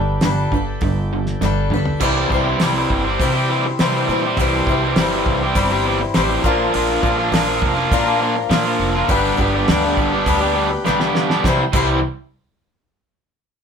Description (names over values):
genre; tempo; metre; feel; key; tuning
folk rock and heartland rock; 102 BPM; 4/4; straight; C mixolydian; A4 = 438 Hz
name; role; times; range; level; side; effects
picked swing-style acoustic guitar; accompaniment; 0.0-12.0 s; Bb2 to C5; -21 LUFS; left 6 dB; none
bright tonewheel organ; sustained chords; 0.0-2.0, 6.7-11.9 s; Bb3 to C5; -31 LUFS; right 1 dB; none
raw garage guitar; riff; 0.0-12.0 s; G2 to G4; -19 LUFS; right 2 dB; overdrive
upright bass; bass; 0.0-12.0 s; F1 to C3; -24 LUFS; right 1 dB; none
damped 70s drum kit; drums; 0.2-11.9 s; crash cymbal, hi-hat, kick drum, snare drum, toms; -22 LUFS; equal; none
room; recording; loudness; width
moderate studio ambience, RT60 0.5 s; band playing live in one room; -15 LUFS; side -6 dB against mid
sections
0.0-2.0 A section; 2.0-11.5 B section; 11.5-13.6 C section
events
drum fill 1.4-2.0, 10.9-11.5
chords
0.0 Gadd9; 2.0 C; 6.5 Bb; 9.1 G; 11.5 C